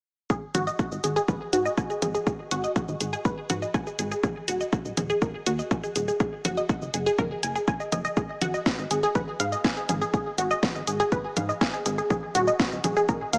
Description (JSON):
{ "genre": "melodic techno", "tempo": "122 BPM", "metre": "4/4", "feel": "straight", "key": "unclear", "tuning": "A4 = 440 Hz", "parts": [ { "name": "unison pluck", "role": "arpeggios", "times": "0.3-13.4 s", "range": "F#4 to G#5", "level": "-30 LUFS", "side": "equal", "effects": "sidechain pumping, tape echo" }, { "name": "electronic kick drum", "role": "drums", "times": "0.3-13.2 s", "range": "none", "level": "-29 LUFS", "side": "equal", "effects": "none" }, { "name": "house drum kit", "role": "drums", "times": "0.3-13.4 s", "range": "congas, hi-hat, shaker, snare drum", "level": "-32 LUFS", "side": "equal", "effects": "none" }, { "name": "plucky analog bass", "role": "bass", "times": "0.5-13.4 s", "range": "D#1 to G#2", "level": "-35 LUFS", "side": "equal", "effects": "sidechain pumping" } ], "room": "light reverb", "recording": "small speaker sound", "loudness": "-27 LUFS", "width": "mono", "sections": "0.3-13.4 A section", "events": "none", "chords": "0.3 N.C.; 4.2 D#m; 6.2 N.C." }